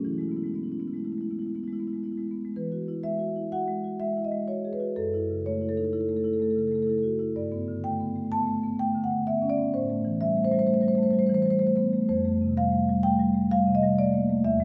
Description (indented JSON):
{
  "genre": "classical, contemporary piece for solo marimba",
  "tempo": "126 BPM",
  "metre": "5/4",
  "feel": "rubato",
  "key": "unclear",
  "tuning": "A4 = 440 Hz",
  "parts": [
    { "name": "marimba with soft mallets", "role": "solo", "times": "0.0-14.6 s", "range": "E2 to A5", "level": "-26 LUFS", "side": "equal", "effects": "none" }
  ],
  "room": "moderate stone room reverb, RT60 1.2 s",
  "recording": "close, detailed microphones",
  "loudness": "-26 LUFS",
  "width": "mono",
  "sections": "0.0-2.6 A section; 2.6-14.6 B section",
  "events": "none",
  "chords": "0.0 E; 2.6 Eadd9; 5.0 F#m7; 7.4 Gadd9; 9.7 Am7; 12.1 Fadd9",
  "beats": "| 0.05 0.56 1.06 1.56 2.07 | 2.57 3.06 3.53 4.02 4.50 | 4.98 5.46 5.93 6.41 6.88 | 7.36 7.84 8.32 8.79 9.26 | 9.73 10.20 10.66 11.13 11.60 | 12.08 12.55 13.02 13.50 13.97 | 14.44"
}